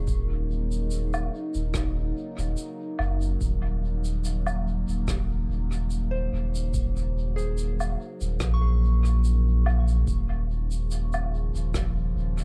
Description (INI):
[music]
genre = ambient dub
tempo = 72 BPM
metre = 4/4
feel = swing 54% on 16ths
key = Eb dorian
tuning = A4 = 439 Hz
[part]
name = warbly tape-like pad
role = sustained chords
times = 0.0-12.4 s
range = Db3 to Bb4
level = -37 LUFS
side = equal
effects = chorus, built-in reverb, phaser
[part]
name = soft synth bell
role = arpeggios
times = 0.0-12.4 s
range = Ab4 to Db6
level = -43 LUFS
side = equal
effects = chorus, analog delay
[part]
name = warm sub bass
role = bass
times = 0.0-12.4 s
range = Eb1 to Bb1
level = -27 LUFS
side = equal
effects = none
[part]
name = electronic kick drum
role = drums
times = 0.1-11.9 s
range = none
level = -33 LUFS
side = equal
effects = none
[part]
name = shaker, woodblock and rim click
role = drums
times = 0.1-12.4 s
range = none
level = -38 LUFS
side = equal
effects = dub echo
[sound]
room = small room reverb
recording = echo-heavy mix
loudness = -27 LUFS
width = mono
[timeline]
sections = 0.0-12.4 A section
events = none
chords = 0.0 Ebm7; 10.1 Bbm/Eb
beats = | 0.07 0.91 1.74 2.58 | 3.41 4.24 5.08 5.91 | 6.74 7.58 8.41 9.24 | 10.07 10.91 11.74